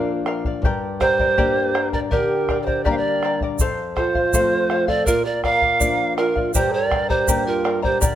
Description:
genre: andean folk, Andean ensemble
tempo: 81 BPM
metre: 2/4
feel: straight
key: G minor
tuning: A4 = 440 Hz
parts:
  - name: bright polished pan flute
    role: melody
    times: 0.0-8.2 s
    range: Bb4 to F5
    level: -20 LUFS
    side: right 3 dB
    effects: none
  - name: mellow large quena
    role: second line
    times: 0.0-8.2 s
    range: F4 to C5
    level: -27 LUFS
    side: right 4 dB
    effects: none
  - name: charango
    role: accompaniment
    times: 0.0-8.2 s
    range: G4 to Bb5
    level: -25 LUFS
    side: left 3 dB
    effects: none
  - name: nylon-string guitar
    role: accompaniment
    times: 0.0-8.2 s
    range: F2 to D4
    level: -27 LUFS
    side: left 4 dB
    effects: none
  - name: bombo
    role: percussion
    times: 0.3-8.2 s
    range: none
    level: -24 LUFS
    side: left 1 dB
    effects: none
  - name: egg shaker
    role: percussion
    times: 3.6-8.2 s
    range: none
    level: -27 LUFS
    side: right 7 dB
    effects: none
room: light reverb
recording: close, detailed microphones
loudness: -17 LUFS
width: side -11 dB against mid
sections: 0.0-8.2 A section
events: none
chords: 0.0 Bb; 0.6 Gm; 3.6 F; 5.1 Bb; 6.5 Gm

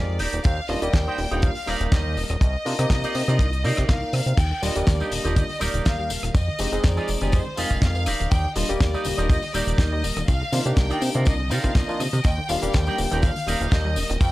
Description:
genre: nu-disco, nu disco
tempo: 122 BPM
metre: 4/4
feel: swing 53% on 16ths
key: Eb major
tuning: A4 = 438 Hz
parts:
  - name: bright symphonic violin section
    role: melody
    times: 0.0-14.3 s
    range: C5 to G5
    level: -29 LUFS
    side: left 1 dB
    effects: tape echo
  - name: barky tine electric piano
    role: accompaniment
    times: 0.0-14.2 s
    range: G3 to D5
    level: -29 LUFS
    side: equal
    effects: overdrive, lush chorus
  - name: electric guitar with an envelope filter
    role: riff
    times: 0.0-14.0 s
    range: Eb4 to G5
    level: -31 LUFS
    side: right 3 dB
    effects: lush chorus
  - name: chorused synth bass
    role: bass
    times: 0.0-14.3 s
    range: Eb1 to C3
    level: -25 LUFS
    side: equal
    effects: none
  - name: damped 70s drum kit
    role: drums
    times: 0.2-14.3 s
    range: crash cymbal, hi-hat, rim click, snare drum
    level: -31 LUFS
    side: left 1 dB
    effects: small room ambience
  - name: kick drum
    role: drums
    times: 0.5-14.3 s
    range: none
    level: -20 LUFS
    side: equal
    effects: small room ambience
  - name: wide unison pluck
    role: arpeggios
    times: 4.4-14.3 s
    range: C3 to C4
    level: -35 LUFS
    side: left 1 dB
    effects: sidechain pumping, tape echo
  - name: tambourine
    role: percussion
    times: 4.4-14.3 s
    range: none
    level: -36 LUFS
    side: left 6 dB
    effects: none
room: small room ambience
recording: dry, gritty hardware recording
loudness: -20 LUFS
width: side -17 dB against mid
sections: 0.0-14.3 A section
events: clean electric guitar fill 11.3-12.2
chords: 0.2 Ebmaj7; 2.4 Cm11; 4.4 Ebmaj7; 6.3 Fm9; 8.1 Ebmaj7; 10.3 Cm11; 12.2 Ebmaj7

